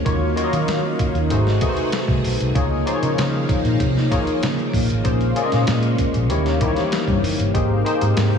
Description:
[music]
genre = polished 1980s jazz-funk pop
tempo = 96 BPM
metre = 4/4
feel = straight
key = unclear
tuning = A4 = 440 Hz
[part]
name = barky tine electric piano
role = accompaniment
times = 0.0-8.4 s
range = A3 to Eb5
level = -22 LUFS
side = left 2 dB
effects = overdrive, analog chorus
[part]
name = string machine, violins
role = sustained chords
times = 0.0-8.4 s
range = C3 to G5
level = -26 LUFS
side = equal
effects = ensemble chorus
[part]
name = vintage muted fingered electric bass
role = bass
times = 0.0-8.4 s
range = Gb1 to Eb3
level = -21 LUFS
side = right 1 dB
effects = none
[part]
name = lo-fi sampler-style drum kit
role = drums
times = 0.1-8.3 s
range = hi-hat, kick drum, snare drum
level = -24 LUFS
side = equal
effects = none
[sound]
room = light reverb, digital ambience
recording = small room ambience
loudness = -17 LUFS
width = side -6 dB against mid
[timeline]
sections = 0.0-8.4 A section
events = none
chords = 0.1 Ebm9; 1.3 Ab7b9; 2.6 Db69; 5.0 Bbm9; 6.3 Eb7b9; 7.5 Abmaj9

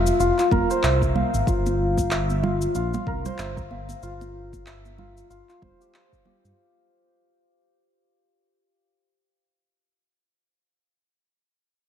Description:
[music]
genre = organic downtempo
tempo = 94 BPM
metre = 4/4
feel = swing 58% on 16ths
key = unclear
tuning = A4 = 440 Hz
[part]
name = santur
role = arpeggios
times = 0.0-9.4 s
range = F4 to F5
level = -24 LUFS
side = left 2 dB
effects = low-pass filter, ping-pong delay
[part]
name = smooth gliding synth bass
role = bass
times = 0.0-6.5 s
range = F1 to G2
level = -26 LUFS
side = equal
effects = sidechain pumping
[part]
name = electronic cabasa and handclaps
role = drums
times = 0.1-6.6 s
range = none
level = -33 LUFS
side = equal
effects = none
[part]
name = electronic kick drum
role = drums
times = 0.5-6.2 s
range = none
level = -27 LUFS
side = equal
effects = none
[part]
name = congas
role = percussion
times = 0.5-6.4 s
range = none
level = -31 LUFS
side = right 3 dB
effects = none
[sound]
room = wet plate reverb, RT60 2.7 s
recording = dreamy mix soaked in reverb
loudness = -20 LUFS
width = side -9 dB against mid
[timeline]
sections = 0.0-6.6 A section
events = fade-out 0.0-6.6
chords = 0.0 F5; 1.5 Fsus24

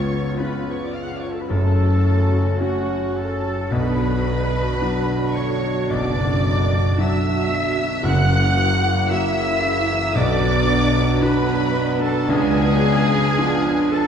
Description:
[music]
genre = classical, romantic movement for piano and orchestra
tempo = 55 BPM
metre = 4/4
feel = rubato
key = F# minor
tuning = A4 = 440 Hz
[part]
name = clear concert grand piano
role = melody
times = 0.0-14.1 s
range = F#1 to F#4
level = -23 LUFS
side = left 2 dB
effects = none
[part]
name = dark studio violin section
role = melody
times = 0.0-14.1 s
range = F#5 to F#6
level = -29 LUFS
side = left 1 dB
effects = none
[part]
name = small flute group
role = second line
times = 0.0-14.1 s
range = F#4 to F#5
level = -28 LUFS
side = equal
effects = none
[part]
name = warm chamber violin section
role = second line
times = 0.0-14.1 s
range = F#4 to F#5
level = -30 LUFS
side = equal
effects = none
[part]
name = warm clarinet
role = second line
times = 0.0-14.1 s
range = D4 to F#4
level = -31 LUFS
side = right 3 dB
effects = none
[part]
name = warm oboe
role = second line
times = 0.0-14.1 s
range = F#4 to F#5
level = -31 LUFS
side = right 1 dB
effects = none
[part]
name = dark studio viola section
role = accompaniment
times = 0.0-14.1 s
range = C#3 to F#4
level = -29 LUFS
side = right 2 dB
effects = none
[part]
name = warm bassoon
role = accompaniment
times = 0.0-14.1 s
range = A#3 to D4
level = -30 LUFS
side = right 3 dB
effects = none
[part]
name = dark French horn section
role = sustained chords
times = 0.0-14.1 s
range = A#3 to F#4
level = -30 LUFS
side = left 2 dB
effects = none
[part]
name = dark trombone section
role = sustained chords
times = 0.0-14.1 s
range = B2 to B3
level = -30 LUFS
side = right 4 dB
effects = none
[part]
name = mellow tuba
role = bass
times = 0.0-13.2 s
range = F#1 to C#2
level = -29 LUFS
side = right 1 dB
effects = none
[part]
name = warm studio cello section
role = bass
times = 0.0-13.2 s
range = C#2 to C#3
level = -25 LUFS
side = equal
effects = none
[part]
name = warm symphonic double bass section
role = bass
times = 0.0-13.2 s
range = F#1 to C#2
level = -28 LUFS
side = equal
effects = none
[part]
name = timpani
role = percussion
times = 0.0-0.9, 8.1-9.6 s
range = F#2 to C#3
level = -24 LUFS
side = equal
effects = none
[sound]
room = wet recital hall reverb, RT60 1.4 s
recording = heard from further back in the room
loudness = -17 LUFS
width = side -7 dB against mid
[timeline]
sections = 0.0-14.1 A section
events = none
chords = 0.0 C#7; 1.5 F#m; 3.7 Bm; 8.1 F#7; 10.2 Bm; 12.3 C#7b9

